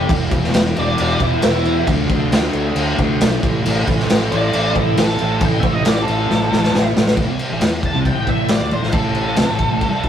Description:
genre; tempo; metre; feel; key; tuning
garage rock duo or trio; 136 BPM; 4/4; straight; unclear; A4 = 440 Hz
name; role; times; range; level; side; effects
octave-fuzz lead guitar; melody; 0.0-10.1 s; E4 to A5; -21 LUFS; right 1 dB; distortion
thick fuzz guitar; riff; 0.0-9.8 s; E2 to D4; -21 LUFS; equal; distortion
fuzz fingered electric bass; bass; 0.0-9.8 s; E1 to E2; -22 LUFS; left 1 dB; overdrive, tube saturation
raw garage drum kit; drums; 0.1-10.1 s; crash cymbal, kick drum, snare drum; -18 LUFS; equal; none
room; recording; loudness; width
light reverb; rough rehearsal-room recording; -14 LUFS; side -9 dB against mid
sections
0.0-7.2 A section; 7.2-10.1 B section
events
drum fill 6.3-7.2; lead electric guitar solo 7.2-10.1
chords
0.1 E5; 1.9 D5; 3.4 A5; 7.2 Am

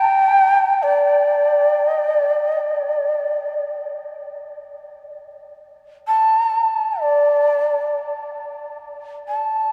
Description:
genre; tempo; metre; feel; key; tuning
japanese traditional, Japanese chamber music; free time; none; none; unclear; A4 = 440 Hz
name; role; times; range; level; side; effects
breathy mellow shakuhachi; solo; 0.0-9.7 s; D5 to A5; -19 LUFS; equal; none
room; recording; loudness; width
wet huge ambient reverb, RT60 7.6 s; in a vast, echoing space; -18 LUFS; mono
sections
0.0-8.2 A section; 8.2-9.7 A section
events
none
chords
none

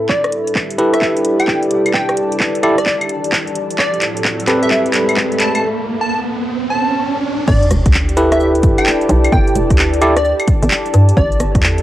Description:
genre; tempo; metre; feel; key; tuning
UK garage, two-step garage; 130 BPM; 4/4; swing 65% on 16ths; G major; A4 = 440 Hz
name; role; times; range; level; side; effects
airy breathy pad; sustained chords; 0.0-11.8 s; A2 to B4; -28 LUFS; left 1 dB; chorus, sidechain pumping, cassette tape
warbly tape-like pad; texture; 0.0-11.8 s; G4 to B5; -22 LUFS; equal; chorus, built-in reverb, sidechain pumping, cassette tape
plucky unison lead; melody; 0.1-11.4 s; D5 to A5; -20 LUFS; equal; cassette tape, analog delay
electronic kick drum; drums; 0.1-11.6 s; none; -16 LUFS; equal; overdrive, high-pass filter on kick, cassette tape, high-pass filter on room
house drum kit; drums; 0.1-11.8 s; cabasa, claves, crash cymbal, handclaps, hi-hat, rim click; -19 LUFS; equal; overdrive, high-pass filter on snare, cassette tape, high-pass filter on perc, high-pass filter on hats, high-pass filter on cymbals, high-pass filter on room
riser and sub drop; sound effects; 1.7-9.3 s; none; -22 LUFS; right 1 dB; none
bell-like tine electric piano; stabs; 0.8-10.1 s; C4 to D5; -16 LUFS; equal; cassette tape
hollow knocking FM bass; bass; 7.5-11.8 s; E1 to G2; -15 LUFS; equal; none
room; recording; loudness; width
moderate studio reverb, RT60 0.6 s; home recording on cassette; -12 LUFS; side -14 dB against mid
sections
0.1-7.5 A section; 7.5-11.8 B section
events
build-up 0.1-7.5; drum fill 0.1-5.6; riser 1.7-7.5; break 5.6-7.5; drop 7.5-11.8; impact 7.5-9.3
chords
0.1 G69; 3.8 Am9; 7.5 G69; 11.2 Am9

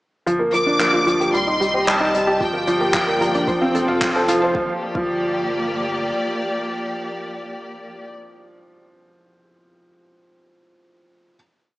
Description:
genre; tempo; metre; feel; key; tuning
piano and strings electronica; 112 BPM; 4/4; straight; G minor; A4 = 439 Hz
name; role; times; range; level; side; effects
rich studio string section; sustained chords; 0.3-8.1 s; Eb3 to Eb5; -26 LUFS; equal; sidechain pumping, low-pass filter
analog pluck; arpeggios; 0.3-5.1 s; F4 to G5; -27 LUFS; right 1 dB; chorus, sidechain pumping, tape echo
warm upright piano; riff; 0.3-11.4 s; F3 to C5; -20 LUFS; equal; none
round analog bass; bass; 0.3-6.1 s; F1 to C2; -40 LUFS; equal; sidechain pumping
jazz brush drum kit; drums; 0.3-4.4 s; handclaps, hi-hat; -24 LUFS; equal; none
rich studio violin section; melody; 0.5-4.0 s; G5 to D6; -22 LUFS; equal; tape echo
electronic kick drum; drums; 2.4-5.1 s; none; -30 LUFS; equal; overdrive
room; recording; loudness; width
wet concert hall reverb, RT60 1.9 s; small speaker sound; -17 LUFS; side -18 dB against mid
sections
0.3-4.6 build; 4.6-8.8 final chord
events
build-up 0.3-4.6; filter sweep on string section 0.3-4.6; filter sweep on synth arpeggio sound 0.3-4.6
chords
0.3 Gm7; 1.3 Cm; 2.4 Gm7; 3.5 F; 4.6 Gm7

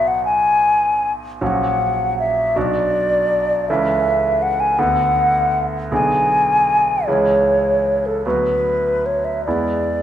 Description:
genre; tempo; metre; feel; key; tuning
classical, romantic duo for flute and grand piano; 53 BPM (dotted quarters); 6/8; uneven beats, rubato; unclear; A4 = 440 Hz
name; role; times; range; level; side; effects
mellow hollow silver concert flute; melody; 0.0-10.0 s; A4 to G#5; -16 LUFS; left 1 dB; none
clear concert grand piano; accompaniment; 0.0-10.0 s; A#1 to A4; -22 LUFS; right 3 dB; none
room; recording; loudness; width
wet recital hall reverb, RT60 1.3 s; none; -15 LUFS; side -11 dB against mid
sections
0.0-10.0 A section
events
none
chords
0.0 B5; 1.4 F#/A#; 2.6 Bm; 3.7 A/C#; 4.8 D6; 5.9 G#dim/B; 7.1 C#m; 8.2 Bm/D; 9.5 E7

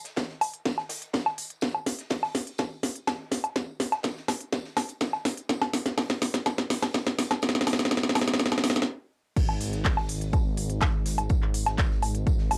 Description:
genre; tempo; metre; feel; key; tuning
melodic techno; 124 BPM; 4/4; straight; unclear; A4 = 440 Hz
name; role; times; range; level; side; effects
big rock drum kit; drums; 0.0-12.6 s; hi-hat, snare drum, tambourine; -48 LUFS; equal; none
techno drum kit; drums; 0.1-12.6 s; crash cymbal, handclaps, hi-hat, snare drum, woodblock; -29 LUFS; equal; cassette tape
electronic kick drum; drums; 0.2-12.4 s; none; -30 LUFS; equal; high-pass filter on kick, cassette tape, high-pass filter on room
dark detuned saw bass; bass; 9.4-12.6 s; G#1; -34 LUFS; equal; sidechain pumping
room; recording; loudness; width
wet booth ambience, RT60 0.2 s; home recording on cassette; -28 LUFS; mono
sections
0.0-9.4 A section; 9.4-12.6 B section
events
build-up 0.0-9.4; drum fill 0.0-8.9; stop 8.9-9.4; drop 9.4-12.6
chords
none

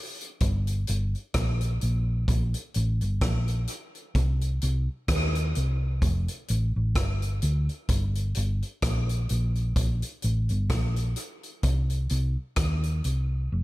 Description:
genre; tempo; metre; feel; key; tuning
dub reggae; 64 BPM; 4/4; swing 57% on 16ths; G minor; A4 = 440 Hz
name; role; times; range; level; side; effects
vintage drum kit; drums; 0.2-13.3 s; hi-hat, kick drum, rim click; -29 LUFS; equal; none
hollow-body short-scale fingered electric bass; bass; 0.4-13.6 s; F1 to Eb2; -25 LUFS; equal; none
room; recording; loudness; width
little or no reverb; none; -24 LUFS; side -18 dB against mid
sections
0.4-13.6 A section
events
none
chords
none

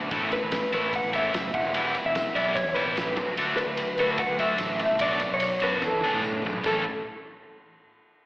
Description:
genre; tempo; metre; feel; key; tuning
indie rock; 147 BPM; 4/4; straight; unclear; A4 = 438 Hz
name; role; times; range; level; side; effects
crunchy overdriven guitar; riff; 0.0-6.8 s; A2 to A4; -33 LUFS; right 1 dB; ensemble chorus, slapback echo
fuzz fingered electric bass; bass; 0.0-6.8 s; E1 to E3; -33 LUFS; equal; overdrive
crunchy overdriven guitar; riff; 0.1-6.8 s; A2 to A4; -28 LUFS; left 1 dB; slapback echo
cloth-damped thuddy drum kit; drums; 0.1-6.7 s; crash cymbal, kick drum, ride cymbal, snare drum, toms; -34 LUFS; equal; none
electric guitar through a small old amp; melody; 0.3-6.8 s; A4 to F#5; -27 LUFS; equal; slapback echo
tambourine; percussion; 0.3-6.8 s; none; -49 LUFS; equal; none
room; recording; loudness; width
little or no reverb; live gig heard through the venue's PA, recital hall reverb, AM radio sound; -23 LUFS; side -20 dB against mid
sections
0.0-6.7 A section; 6.7-8.3 B section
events
drum fill 5.8-6.7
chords
0.1 Asus2; 1.5 Emadd9; 3.2 D; 5.0 Bm; 5.8 E7sus4; 6.7 A

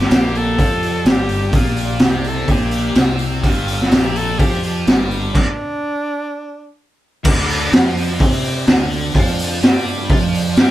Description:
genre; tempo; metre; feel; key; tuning
psychedelic rock; 126 BPM; 4/4; straight; D minor; A4 = 440 Hz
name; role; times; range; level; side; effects
edgy alto saxophone; melody; 0.0-6.7 s; D4 to A4; -24 LUFS; equal; none
warm symphonic string section; sustained chords; 0.0-10.7 s; A3 to E6; -31 LUFS; right 2 dB; none
thick fuzz guitar; riff; 0.0-10.7 s; G2 to C5; -21 LUFS; equal; distortion, phaser
fuzz fingered electric bass; bass; 0.0-10.7 s; G1 to C3; -23 LUFS; equal; overdrive
raw garage drum kit; drums; 0.0-10.7 s; crash cymbal, hi-hat, kick drum, snare drum; -15 LUFS; equal; none
tambourine; percussion; 0.1-10.7 s; none; -40 LUFS; right 7 dB; none
room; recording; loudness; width
light reverb; band playing live in one room; -14 LUFS; side -14 dB against mid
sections
0.0-7.3 A section; 7.3-10.7 B section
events
stop 5.3-7.3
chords
0.0 G5; 7.3 Dm

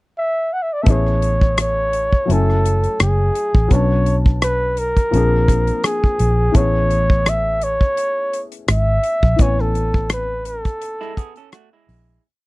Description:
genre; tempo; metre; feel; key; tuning
lush 1970s-style soul; 84 BPM; 4/4; swing 54% on 16ths; A major; A4 = 440 Hz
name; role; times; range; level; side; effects
mellow flugelhorn; melody; 0.2-11.5 s; G#4 to F#5; -20 LUFS; equal; none
dark baby grand piano; accompaniment; 0.8-12.3 s; E3 to A5; -25 LUFS; left 4 dB; none
vintage muted fingered electric bass; bass; 0.9-12.2 s; F#1 to B1; -18 LUFS; equal; none
damped 70s drum kit; drums; 0.9-12.1 s; hi-hat, kick drum, rim click; -16 LUFS; equal; none
electric guitar through a small old amp; riff; 11.0-12.2 s; G#3 to A4; -38 LUFS; right 7 dB; none
room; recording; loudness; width
little or no reverb; dry, close 1970s-style studio recording; -15 LUFS; side -20 dB against mid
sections
0.0-0.9 pickup bar; 0.9-12.2 A section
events
fade-out 9.4-12.2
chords
0.0 N.C.; 0.9 Amaj9; 2.3 F#m9; 3.7 Bm7; 5.1 Bb9; 6.6 Amaj9

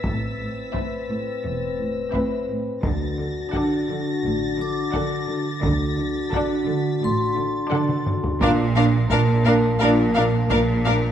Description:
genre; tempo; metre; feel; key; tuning
cinematic, suspense film score; 86 BPM; 4/4; straight; unclear; A4 = 440 Hz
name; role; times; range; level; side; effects
dark French horn section; sustained chords; 0.0-10.1 s; C4 to B4; -27 LUFS; left 4 dB; none
solo taiko drums; drums; 0.0-11.1 s; none; -28 LUFS; equal; none
vibraphone with hard mallets; texture; 0.0-11.1 s; Bb4 to D6; -29 LUFS; left 1 dB; none
warm symphonic violin section; texture; 0.0-8.0 s; E6 to B6; -35 LUFS; left 3 dB; none
rich symphonic cello section; riff; 0.1-11.1 s; A2 to D3; -28 LUFS; right 2 dB; none
rich symphonic cello section; bass; 0.1-11.1 s; E2 to D3; -25 LUFS; right 1 dB; none
warm studio double bass section; bass; 0.1-11.1 s; E1 to D2; -26 LUFS; right 3 dB; none
warm symphonic violin section; melody; 0.7-10.9 s; E5 to F#5; -29 LUFS; left 2 dB; none
rich symphonic viola section; accompaniment; 0.7-10.9 s; C4 to D4; -26 LUFS; right 2 dB; none
rich symphonic violin section; second line; 0.8-10.9 s; A4 to B4; -28 LUFS; left 2 dB; none
room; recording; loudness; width
moderate scoring stage reverb, RT60 2.0 s; none; -20 LUFS; side -10 dB against mid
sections
0.0-11.1 A section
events
drum fill 7.7-8.4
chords
0.0 Amadd9; 2.8 D; 8.4 Bb

